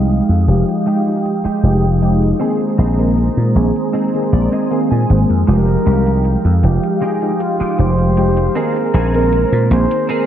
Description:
vaporwave; 78 BPM; 4/4; straight; F minor; A4 = 439 Hz
warbly lo-fi synth keys; accompaniment; 0.0-10.3 s; Eb3 to Bb4; -18 LUFS; equal; analog chorus, analog delay
lush unison pad; sustained chords; 0.0-10.3 s; Ab3 to Eb6; -23 LUFS; right 1 dB; chorus
clean electric guitar; riff; 0.0-10.3 s; Ab3 to Ab5; -24 LUFS; right 2 dB; analog chorus, low-pass filter, analog delay
dry thumbed slap bass; bass; 0.0-9.8 s; F1 to Bb2; -14 LUFS; equal
electronic hi-hat; drums; 0.1-10.3 s; -44 LUFS; right 2 dB
warm flugelhorn; melody; 5.5-10.3 s; F4 to C5; -21 LUFS; right 2 dB; vintage 12-bit sampler grit, tape echo
wet plate reverb, RT60 2.3 s; dreamy mix soaked in reverb, cassette tape, low-pass filter; -12 LUFS; side -10 dB against mid
0.0-10.3 A section
filter sweep on clean electric guitar 0.0-10.3; filter sweep 0.0-10.3; clean electric guitar fill 3.9-5.5
0.0 Fm9; 2.4 Bb9sus4; 5.5 Fm9; 8.6 Bb9sus4

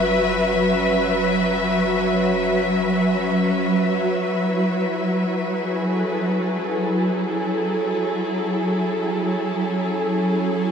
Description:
ambient; free time; F# minor; A4 = 439 Hz
rich studio string section; sustained chords; 0.0-10.7 s; F#3 to E5; -19 LUFS; equal
warm sub bass; bass; 0.0-4.2 s; F#1; -40 LUFS; equal
bowed-like drone; drone; 0.0-10.7 s; F#3 to C#4; -28 LUFS; right 3 dB; built-in reverb, phaser
wet huge ambient reverb, RT60 7.4 s; in a vast, echoing space; -19 LUFS; side -7 dB against mid
0.0-4.2 A section; 4.2-10.7 B section
0.0 Esus2/F#; 4.2 F#m9

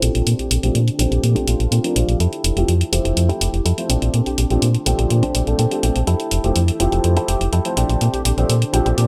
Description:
filtered disco house; 124 BPM; 4/4; straight; A4 = 440 Hz
bright grand piano; accompaniment; 0.0-9.1 s; F3 to C5; -26 LUFS; equal; phaser, low-pass filter
string machine, full ensemble; sustained chords; 0.0-9.1 s; D4 to G5; -31 LUFS; equal
direct-recorded clean electric guitar; riff; 0.0-9.0 s; C4 to A5; -29 LUFS; equal; low-pass filter
slap-like FM bass; bass; 0.0-9.1 s; F1 to Bb2; -20 LUFS; equal; low-pass filter
electronic hi-hat; drums; 0.0-9.1 s; -26 LUFS; equal
clear horn section; melody; 0.4-9.1 s; F4 to G4; -33 LUFS; equal; low-pass filter, delay
light reverb; -18 LUFS; mono
0.0-9.1 A section
filter sweep 0.0-9.1; clean electric guitar fill 1.2-2.2, 5.1-6.1
0.0 Bbmaj13; 2.2 Fmaj9; 3.9 Bbmaj13; 6.1 Fmaj9; 7.8 Bbmaj13

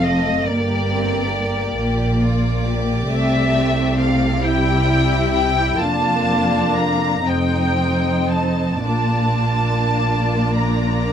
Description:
classical, slow romantic movement for string orchestra; 34-46 BPM (dotted quarters); 12/8; rubato; Bb major; A4 = 440 Hz
rich studio violin section; melody; 0.0-11.1 s; D5 to Bb5; -22 LUFS; left 1 dB
rich studio violin section; second line; 0.0-11.1 s; Eb4 to F5; -26 LUFS; equal
rich studio viola section; accompaniment; 0.0-11.1 s; G3 to E4; -22 LUFS; left 2 dB
dark studio cello section; bass; 0.0-11.1 s; F2 to C3; -23 LUFS; equal
warm studio double bass section; bass; 0.0-11.1 s; F1 to C2; -22 LUFS; right 2 dB
light reverb; -16 LUFS; side -8 dB against mid
0.0-11.1 A section
0.5 Gm; 3.1 C; 5.8 Bb/F; 7.3 Fsus2; 8.8 Bb

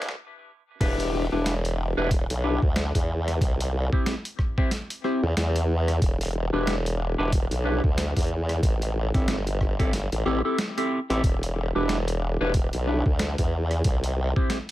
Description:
glitch hop; 92 BPM; 4/4; swing 58% on 16ths; E minor; A4 = 440 Hz
mellow electric guitar; stabs; 0.0-14.6 s; C4 to C5; -28 LUFS; left 1 dB; phaser, sidechain pumping, ping-pong delay
formant-sweep wobble bass; bass; 0.0-14.3 s; E1 to E2; -25 LUFS; equal; chorus, overdrive, high-pass filter
boom bap sampler-style drum kit; drums; 0.0-14.7 s; crash cymbal, hi-hat, rim click, snare drum; -31 LUFS; equal; studio reverb
electronic kick drum; drums; 0.8-14.5 s; -24 LUFS; equal; studio reverb
little or no reverb; high-pass filter; -22 LUFS; side -15 dB against mid
0.8-14.7 A section
drum fill 0.0; stop 0.1-0.8; drop 0.8-14.7
0.0 N.C.; 0.8 Em7; 3.4 C; 6.0 Em7; 8.6 Am7; 11.2 Em7; 13.8 C

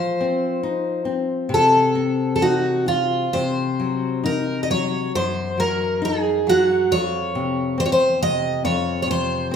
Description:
fado-style ballad; 68 BPM; 2/4; rubato; A4 = 440 Hz
picked twelve-string acoustic guitar; melody; 0.0-9.6 s; F4 to Eb5; -20 LUFS; right 1 dB
nylon-string guitar; accompaniment; 0.0-9.6 s; F2 to Eb4; -23 LUFS; left 4 dB
wet recital hall reverb, RT60 1.4 s; minimal, uncompressed stereo recording; -18 LUFS; side -7 dB against mid
0.0-9.6 A section
0.0 F7; 3.3 Cdim; 6.9 F5

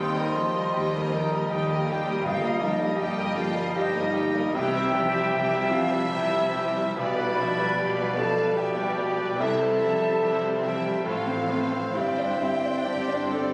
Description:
classical, romantic movement for piano and orchestra; 62-80 BPM; 3/4; rubato; C major from 4.5 s; A4 = 440 Hz
bright grand piano; melody; 0.0-13.5 s; B1 to D5; -32 LUFS; equal
rich studio violin section; melody; 0.0-13.5 s; A4 to G5; -42 LUFS; equal
hollow small flute group; second line; 0.0-13.5 s; C5 to C6; -36 LUFS; equal
rich studio violin section; second line; 0.0-13.5 s; Bb4 to G5; -41 LUFS; equal
warm studio viola section; accompaniment; 0.0-13.5 s; E3 to B4; -36 LUFS; equal
mellow French horn section; sustained chords; 0.0-13.5 s; C4 to C5; -32 LUFS; equal
warm trombone section; sustained chords; 0.0-13.5 s; F3 to C4; -39 LUFS; equal
dark trumpet section; stabs; 0.0-13.5 s; C5 to E5; -33 LUFS; equal
rich studio double bass section; bass; 0.0-13.5 s; G1 to Eb2; -39 LUFS; equal
warm studio cello section; bass; 0.0-13.5 s; Eb2 to C3; -37 LUFS; equal
timpani; percussion; 2.2-3.3 s; G2; -41 LUFS; equal
clear clarinet; second line; 12.9-13.5 s; G4 to A4; -38 LUFS; equal
wet concert hall reverb, RT60 1.9 s; recorded on a phone in the room, studio reverb; -25 LUFS; mono
0.0-13.5 A section
0.0 Eb; 2.2 Eb/G; 4.5 C; 7.0 G/B; 9.4 C; 11.0 F/A; 11.9 Gsus4

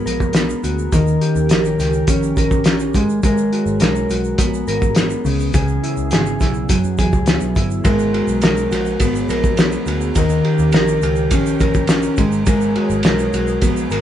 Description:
indie pop, bedroom pop; 104 BPM; 4/4; straight; G# minor; A4 = 440 Hz
mellow electric guitar; accompaniment; 0.0-14.0 s; C#3 to A#4; -18 LUFS; left 1 dB; warbly pitch drift
phased analog pad; sustained chords; 0.0-14.0 s; D#3 to A#4; -27 LUFS; right 2 dB; phaser, chorus
vintage muted picked electric bass; bass; 0.1-14.0 s; F#1 to F#2; -23 LUFS; equal
cloth-damped thuddy drum kit; drums; 0.1-14.0 s; hi-hat, kick drum, ride cymbal, snare drum; -18 LUFS; equal
tube shaker; percussion; 0.1-14.0 s; -36 LUFS; right 7 dB
light reverb; band playing live in one room, nothing above 10.6 kHz; -14 LUFS; side -10 dB against mid
0.0-7.8 A section; 7.8-14.0 A section
0.0 G#m9; 0.9 D#7; 2.9 G#m9; 5.3 C#m7; 6.7 F#9sus4; 7.8 G#m9; 10.2 D#7; 12.2 G#m9

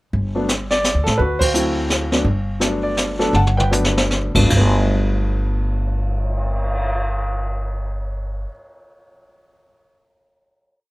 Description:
jazz piano trio; 145-170 BPM; 3/4; swing 63% on 8ths; G major; A4 = 440 Hz
upright bass; bass; 0.1-8.4 s; G1 to A2; -20 LUFS; equal
jazz brush drum kit; drums; 0.1-6.9 s; brushed snare drum, crash cymbal, cymbal swell, hi-hat, kick drum, ride cymbal, snare drum, toms; -23 LUFS; equal
warm baby grand piano; melody; 0.3-8.5 s; G2 to A5; -21 LUFS; equal
light reverb; rough home demo mix; -17 LUFS; side -19 dB against mid
0.1-4.5 A section; 4.5-7.0 final chord
band accent 1.4; slowing down 2.3-4.5; drum fill 3.3-4.1
0.1 Gsus2; 1.2 D7; 2.3 Gmaj9

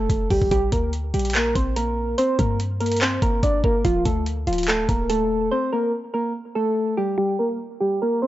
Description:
hip hop, trap; 144 BPM; 4/4; half-time; A4 = 440 Hz
soft electric-piano-like synth keys; melody; 0.0-8.3 s; F3 to D5; -22 LUFS; equal; chorus, low-pass filter
clean 808-style bass; bass; 0.0-5.5 s; D1 to G2; -26 LUFS; equal
trap drum kit; drums; 0.1-5.2 s; handclaps, hi-hat, kick drum; -24 LUFS; equal; vintage 12-bit sampler grit
digital ambience; dry, gritty hardware recording, nothing above 7.7 kHz; -20 LUFS; side -14 dB against mid
0.0-7.2 A section; 7.2-8.3 B section
break 5.5-7.2
0.0 Fsus2; 0.5 Bb6; 2.2 Gm; 3.8 Dm; 5.5 Gmadd9; 7.2 Gm

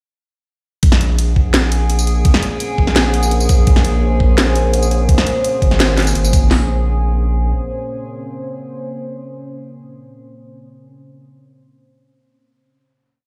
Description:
half-time drum and bass; 169 BPM; 4/4; half-time; Bb minor; A4 = 439 Hz
deep dark ambient pad; sustained chords; 1.9-10.1 s; Bb3 to C5; -26 LUFS; equal; chorus, built-in reverb, sidechain pumping
saturated sub bass; bass; 0.8-7.5 s; Ab1 to Bb1; -18 LUFS; equal
drum and bass drum kit; drums; 0.8-6.6 s; hi-hat, kick drum, snare drum; -16 LUFS; equal
drum and bass drum kit; drums; 0.8-6.4 s; hi-hat, snare drum, tambourine; -20 LUFS; equal
metallic inharmonic drone; texture; 1.3-6.5 s; Ab4; -28 LUFS; equal; chorus, built-in reverb
light reverb; played on a big sound system in a bare room, stone room reverb; -15 LUFS; mono
0.8-6.5 drop; 6.5-9.4 final chord
drop 0.8-6.5
0.8 Bbmadd9

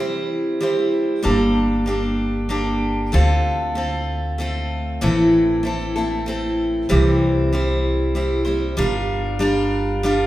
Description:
acoustic folk duo or small band; 95 BPM; 3/4; straight; G dorian; A4 = 444 Hz
picked steel-string acoustic guitar; accompaniment; 0.0-10.3 s; A2 to C5; -19 LUFS; equal
upright bass; bass; 1.3-10.3 s; G1 to D2; -23 LUFS; equal
wet recital hall reverb, RT60 1.5 s; recorded in a church or concert hall; -18 LUFS; side -15 dB against mid
0.0-8.8 A section; 8.8-10.3 B section
0.0 C; 1.2 Gmadd9; 3.1 Dm7; 5.0 Am; 6.9 C; 8.8 Gm7

